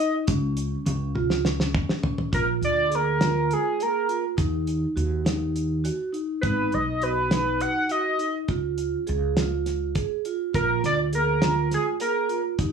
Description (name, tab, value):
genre	progressive instrumental, band music in an uneven meter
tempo	205 BPM (eighths)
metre	7/8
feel	straight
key	unclear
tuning	A4 = 444 Hz
part	sync lead	melody	0.0-12.4 s	Ab4 to Gb5	-24 LUFS	equal	chorus
part	vibraphone with medium hard mallets	arpeggios	0.0-12.7 s	Db4 to Ab4	-28 LUFS	right 4 dB	none
part	upright bass	bass	0.3-12.7 s	Ab1 to Eb2	-27 LUFS	right 1 dB	none
part	damped 70s drum kit	drums	0.3-12.7 s	hi-hat, kick drum, snare drum, toms	-26 LUFS	equal	none
room	light reverb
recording	worn, warbling old tape, cassette tape, warbly pitch drift, studio ambience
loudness	-22 LUFS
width	side -6 dB against mid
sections	0.0-2.3 A section; 2.3-12.7 B section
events	drum fill 1.2-2.3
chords	0.3 Db; 2.3 Bb7; 4.4 Ebm; 6.4 Abm7 (rootless); 8.5 Db; 10.5 Bb7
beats	| 0.28 0.57 0.87 1.16 1.45 1.75 2.04 | 2.33 2.62 2.92 3.21 3.50 3.79 4.09 | 4.38 4.67 4.97 5.26 5.55 5.85 6.14 | 6.43 6.73 7.02 7.32 7.61 7.90 8.20 | 8.49 8.78 9.08 9.37 9.66 9.96 10.25 | 10.54 10.83 11.13 11.42 11.71 12.00 12.29 | 12.59